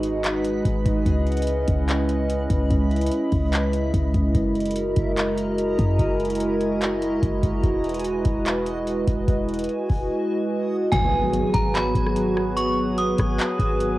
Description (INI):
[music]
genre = hip hop, atmospheric cloud-rap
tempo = 146 BPM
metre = 4/4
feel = half-time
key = G# minor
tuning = A4 = 440 Hz
[part]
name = hollow soft pad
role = sustained chords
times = 0.0-14.0 s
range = F#3 to D#5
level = -23 LUFS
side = right 1 dB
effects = chorus, sidechain pumping, cassette tape
[part]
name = clean 808-style bass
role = bass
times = 0.0-14.0 s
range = E1 to F#2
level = -25 LUFS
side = equal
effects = transformer saturation
[part]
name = booming analog drum machine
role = drums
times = 0.0-13.9 s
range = handclaps, hi-hat, kick drum, rim click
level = -26 LUFS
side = equal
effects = none
[part]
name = backwards swelling texture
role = texture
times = 0.0-14.0 s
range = E4 to B5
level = -35 LUFS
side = left 1 dB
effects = built-in reverb, cassette tape
[part]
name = metallic FM bell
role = melody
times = 10.9-14.0 s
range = G#5 to D#6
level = -26 LUFS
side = right 1 dB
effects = chorus, tremolo, low-pass filter, analog delay
[part]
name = impact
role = sound effects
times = 10.9-12.6 s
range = none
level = -29 LUFS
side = equal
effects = none
[sound]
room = light reverb, digital ambience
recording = home recording on cassette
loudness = -20 LUFS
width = side -17 dB against mid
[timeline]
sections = 0.0-10.9 A section; 10.9-14.0 B section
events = impact 10.9-12.6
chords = 0.0 G#m7; 1.1 C#m9; 4.3 F#13; 7.6 Emaj9; 10.9 G#m7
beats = 0.24 0.65 | 1.06 1.47 1.88 2.29 | 2.71 3.12 3.53 3.94 | 4.35 4.76 5.17 5.58 | 5.99 6.40 6.81 7.22 | 7.64 8.05 8.46 8.87 | 9.28 9.69 10.10 10.51 | 10.92 11.34 11.75 12.16 | 12.57 12.98 13.39 13.80